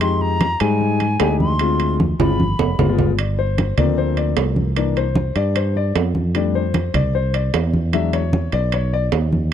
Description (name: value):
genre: Afro-Cuban jazz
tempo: 151 BPM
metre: 4/4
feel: straight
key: G minor from 3.2 s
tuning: A4 = 443 Hz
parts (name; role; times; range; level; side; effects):
- hollow concert flute; melody; 0.0-2.9 s; Ab5 to C6; -23 LUFS; left 1 dB; none
- warm baby grand piano; accompaniment; 0.0-9.1 s; E3 to E5; -22 LUFS; left 10 dB; none
- fingered electric bass; bass; 0.0-9.5 s; F1 to Ab2; -20 LUFS; right 1 dB; none
- congas; percussion; 0.0-9.5 s; none; -22 LUFS; right 1 dB; none
- timbales; percussion; 0.0-9.3 s; none; -25 LUFS; right 11 dB; none
room: studio reverb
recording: dry, close 1970s-style studio recording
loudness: -16 LUFS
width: side -9 dB against mid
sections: 0.0-3.2 A section; 3.2-9.5 B section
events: drum fill 2.0-3.2; grand piano solo 3.2-9.5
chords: 0.0 Fm9; 1.6 Dm7b5; 2.4 G7b9; 3.2 Gm11; 4.8 C7; 6.4 F69; 7.9 E9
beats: | 0.01 0.41 0.81 1.20 | 1.60 2.00 2.39 2.79 | 3.18 3.58 3.98 4.37 | 4.77 5.17 5.56 5.96 | 6.36 6.75 7.15 7.54 | 7.94 8.34 8.73 9.13 | 9.53